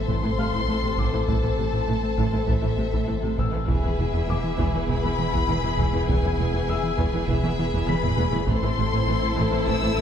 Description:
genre	cinematic, hybrid orchestral and electronic film score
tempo	100 BPM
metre	4/4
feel	straight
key	A harmonic minor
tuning	A4 = 440 Hz
part	warm symphonic violin section	melody	0.0-10.0 s	E5 to E6	-31 LUFS	left 6 dB	none
part	warm symphonic violin section	second line	0.0-10.0 s	G#4 to C5	-32 LUFS	left 5 dB	none
part	clear French horn section	sustained chords	0.0-10.0 s	B3 to A4	-30 LUFS	left 6 dB	none
part	round analog bass	riff	0.0-10.0 s	E2 to A3	-29 LUFS	left 1 dB	none
part	sub bass with octave	bass	0.0-10.0 s	E1 to A1	-31 LUFS	right 1 dB	none
part	impact	sound effects	0.0-1.3 s	none	barely audible	none	none
part	clear baby grand piano	texture	0.0-10.0 s	E5 to B6	-39 LUFS	left 4 dB	ping-pong delay
part	warm symphonic viola section	accompaniment	0.1-10.0 s	C3 to E4	-32 LUFS	right 3 dB	none
part	dark symphonic double bass section	bass	0.1-10.0 s	E1 to A1	-31 LUFS	right 5 dB	none
part	rich symphonic cello section	bass	0.1-9.9 s	E2 to A2	-30 LUFS	right 5 dB	none
part	taiko ensemble	drums	0.1-10.0 s	none	-30 LUFS	right 1 dB	none
room	moderate scoring stage reverb, RT60 1.7 s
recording	none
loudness	-21 LUFS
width	side -8 dB against mid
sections	0.0-10.0 A section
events	impact 0.0-1.3; drum fill 7.9-8.5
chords	0.0 Am; 3.7 E; 8.5 Am

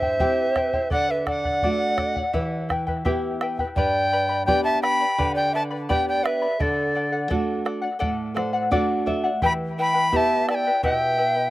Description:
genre	andean folk, Andean ensemble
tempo	85 BPM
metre	4/4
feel	straight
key	unclear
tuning	A4 = 436 Hz
part	bright reedy large quena	melody	0.0-11.5 s	D5 to B5	-23 LUFS	equal	none
part	polished pan flute	second line	0.0-11.5 s	A4 to G5	-26 LUFS	right 2 dB	slapback echo
part	charango	accompaniment	0.0-11.5 s	E4 to B5	-28 LUFS	left 3 dB	slapback echo
part	nylon-string guitar	accompaniment	0.0-11.5 s	G2 to E5	-28 LUFS	right 1 dB	slapback echo
part	bombo	percussion	0.0-11.0 s	none	-29 LUFS	right 1 dB	none
room	little or no reverb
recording	recorded outdoors, with no room sound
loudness	-20 LUFS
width	side -16 dB against mid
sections	0.0-3.8 A section; 3.8-11.5 B section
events	nylon-string guitar fill 8.0-9.4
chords	0.0 C; 0.9 D; 2.3 Em; 3.8 G; 6.6 D; 9.4 Em

